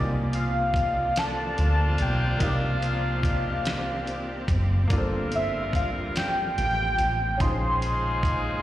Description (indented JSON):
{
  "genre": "slow six-eight R&B",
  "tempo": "48 BPM (dotted quarters)",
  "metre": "6/8",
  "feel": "straight",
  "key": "C dorian",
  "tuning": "A4 = 439 Hz",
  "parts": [
    { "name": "clear grand piano", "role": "accompaniment", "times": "0.0-8.6 s", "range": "Bb3 to Ab5", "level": "-35 LUFS", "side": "equal", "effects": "slapback echo" },
    { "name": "clear studio string section", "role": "sustained chords", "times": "0.0-8.6 s", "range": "Db3 to D5", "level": "-35 LUFS", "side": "right 1 dB", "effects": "none" },
    { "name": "woody fretless electric bass", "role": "bass", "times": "0.0-8.6 s", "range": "F#1 to D2", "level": "-27 LUFS", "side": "equal", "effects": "none" },
    { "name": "warm velvety synth lead", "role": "melody", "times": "0.3-8.6 s", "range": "E5 to C6", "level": "-28 LUFS", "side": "equal", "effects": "chorus, slapback echo" },
    { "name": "dusty soul sampler-style drum kit", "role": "drums", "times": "0.3-8.4 s", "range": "hi-hat, kick drum, snare drum", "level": "-28 LUFS", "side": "equal", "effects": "none" },
    { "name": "clear horn section", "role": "stabs", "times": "1.2-8.6 s", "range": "Bb3 to Bb4", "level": "-34 LUFS", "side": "left 1 dB", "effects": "slapback echo" }
  ],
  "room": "small room ambience",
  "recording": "live gig heard through the venue's PA, recital hall reverb",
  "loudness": "-23 LUFS",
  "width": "side -14 dB against mid",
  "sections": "0.0-8.6 A section",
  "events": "none",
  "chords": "0.0 Cm11; 4.9 Gm11; 7.4 Bbm11"
}